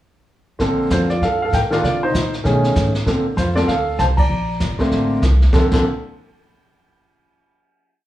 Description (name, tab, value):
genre	jazz piano trio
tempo	195 BPM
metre	4/4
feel	swing 61% on 8ths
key	Bb major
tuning	A4 = 440 Hz
part	clear grand piano	melody	0.6-5.8 s	D3 to Bb5	-18 LUFS	equal	plate reverb
part	upright bass	bass	0.6-5.8 s	G1 to C3	-19 LUFS	equal	none
part	jazz brush drum kit	drums	0.6-5.8 s	brushed snare drum, crash cymbal, hi-hat, kick drum, ride cymbal, snare drum	-23 LUFS	right 1 dB	none
room	light reverb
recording	worn, warbling old tape, cassette tape, warbly pitch drift, studio reverb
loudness	-15 LUFS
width	side -14 dB against mid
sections	0.6-5.5 A section; 5.5-6.8 final chord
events	band accent 4.1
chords	0.6 Bbmaj9; 1.2 Gm9; 1.8 Cm7; 2.4 B13; 3.1 Bbmaj9; 5.5 N.C.